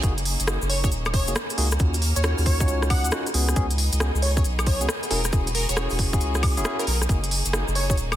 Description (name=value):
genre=UK garage, two-step garage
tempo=136 BPM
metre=4/4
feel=swing 65% on 16ths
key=F# major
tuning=A4 = 439 Hz
part: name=clear studio violin section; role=sustained chords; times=0.0-8.2 s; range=A#3 to E#6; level=-34 LUFS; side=equal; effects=sidechain pumping
part: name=bright tine electric piano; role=stabs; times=0.0-7.9 s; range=A#3 to G#4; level=-31 LUFS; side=left 1 dB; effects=digital delay
part: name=saturated sub bass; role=bass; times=0.0-8.2 s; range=D#1 to D#2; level=-24 LUFS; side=equal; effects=none
part: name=electronic kick drum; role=drums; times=0.0-8.0 s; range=none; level=-25 LUFS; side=equal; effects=none
part: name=garage drum kit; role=drums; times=0.0-8.2 s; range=hi-hat, rim click, woodblock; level=-27 LUFS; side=equal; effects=soft clipping on snare
part: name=cabasa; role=percussion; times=0.0-8.2 s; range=none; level=-34 LUFS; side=left 6 dB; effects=none
part: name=plucky unison lead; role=melody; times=0.7-7.9 s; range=A#4 to F#5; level=-30 LUFS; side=equal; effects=cassette tape, digital delay
room=little or no reverb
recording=dense, heavily limited modern master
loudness=-20 LUFS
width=side -12 dB against mid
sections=0.0-8.2 A section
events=none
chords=0.0 F#69; 1.8 D#m9; 3.3 C#7sus4; 5.1 E69; 7.1 F#69